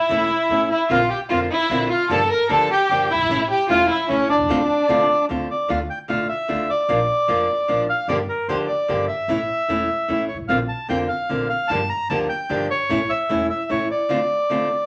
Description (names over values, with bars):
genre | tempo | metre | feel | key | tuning
tango | 150 BPM | 3/4 | rubato | D minor | A4 = 441 Hz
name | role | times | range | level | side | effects
bandoneon | melody | 0.0-14.9 s | C#4 to Bb5 | -23 LUFS | equal | none
warm violin | second line | 0.0-5.3 s | C#4 to Bb4 | -23 LUFS | equal | none
nylon-string guitar | accompaniment | 0.1-14.7 s | D3 to G4 | -26 LUFS | equal | none
upright bass | bass | 0.1-13.9 s | E1 to D2 | -35 LUFS | equal | none
room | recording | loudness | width
wet studio reverb, RT60 0.6 s | none | -21 LUFS | mono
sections
0.0-5.7 A section; 5.7-14.9 A section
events
none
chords
0.0 A; 0.9 Bbadd9; 2.1 Gm7; 3.3 A; 4.5 Dm7; 5.7 Dm; 6.9 Bb; 8.1 Gm7; 9.3 A; 10.5 Bbadd9; 11.7 Gm7; 12.9 A; 14.1 Dm7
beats
0.10 0.50 | 0.90 1.30 1.70 | 2.10 2.50 2.90 | 3.30 3.70 4.09 | 4.49 4.89 5.29 | 5.69 6.09 6.49 | 6.89 7.29 7.69 | 8.09 8.49 8.89 | 9.29 9.69 10.09 | 10.49 10.90 11.30 | 11.70 12.10 12.50 | 12.90 13.30 13.70 | 14.10 14.50